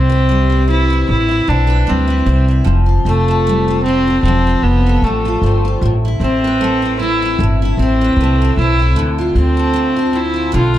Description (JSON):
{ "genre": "pop", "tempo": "76 BPM", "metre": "4/4", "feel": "swing 55% on 16ths", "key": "unclear", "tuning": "A4 = 440 Hz", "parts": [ { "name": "clear viola", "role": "melody", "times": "0.0-10.8 s", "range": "A3 to F4", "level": "-16 LUFS", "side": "equal", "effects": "digital delay" }, { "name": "picked steel-string acoustic guitar", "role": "accompaniment", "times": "0.0-10.8 s", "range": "A2 to B4", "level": "-19 LUFS", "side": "left 1 dB", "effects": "double-tracked left and right" }, { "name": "upright bass", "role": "bass", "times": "0.0-10.8 s", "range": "E1 to D2", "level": "-15 LUFS", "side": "equal", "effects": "none" } ], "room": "moderate small room reverb, RT60 0.5 s", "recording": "dark, warm production", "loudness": "-12 LUFS", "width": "side -13 dB against mid", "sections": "0.0-10.8 A section", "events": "none", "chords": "0.0 Cmaj7; 2.7 Fadd9; 5.8 Amadd9; 9.0 Dm7" }